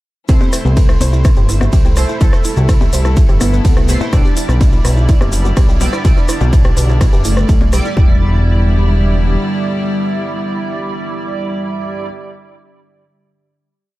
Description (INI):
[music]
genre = melodic techno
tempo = 125 BPM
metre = 4/4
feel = straight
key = E minor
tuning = A4 = 439 Hz
[part]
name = wide unison lead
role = melody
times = 0.3-12.1 s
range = G3 to D4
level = -22 LUFS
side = equal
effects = sidechain pumping, tape echo
[part]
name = rich chamber string section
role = sustained chords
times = 0.3-12.1 s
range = C3 to E4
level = -27 LUFS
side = left 2 dB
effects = sidechain pumping
[part]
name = soft round pluck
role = arpeggios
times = 0.3-8.2 s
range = B3 to C5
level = -26 LUFS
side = right 1 dB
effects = chorus, sidechain pumping, tape echo
[part]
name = sync-sweep polysynth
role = stabs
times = 0.3-12.1 s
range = G3 to D5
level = -23 LUFS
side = right 2 dB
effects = ensemble chorus, sidechain pumping, tape echo
[part]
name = fat analog bass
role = bass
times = 0.3-9.4 s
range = E1 to C2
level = -14 LUFS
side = equal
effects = sidechain pumping
[part]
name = electronic kick drum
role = drums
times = 0.3-8.1 s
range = none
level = -11 LUFS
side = equal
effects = none
[part]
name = techno drum kit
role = drums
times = 0.3-7.8 s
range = hi-hat, percussion blips, ride cymbal, rim click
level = -23 LUFS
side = left 2 dB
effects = sidechain pumping on cymbals, sidechain pumping on perc, sidechain pumping on hats, tape echo
[part]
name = shekere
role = percussion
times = 0.3-7.9 s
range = none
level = -29 LUFS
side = left 2 dB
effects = tape echo
[sound]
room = digital ambience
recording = echo-heavy mix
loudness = -11 LUFS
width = side -17 dB against mid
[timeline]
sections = 0.3-8.0 drop; 8.0-11.8 final chord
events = drop 0.3-8.0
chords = 0.3 C6; 4.1 Em7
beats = | 0.29 0.77 1.25 1.73 | 2.21 2.69 3.17 3.65 | 4.13 4.61 5.09 5.57 | 6.05 6.53 7.01 7.49 | 7.97 8.45 8.93 9.41 | 9.89 10.37 10.85 11.33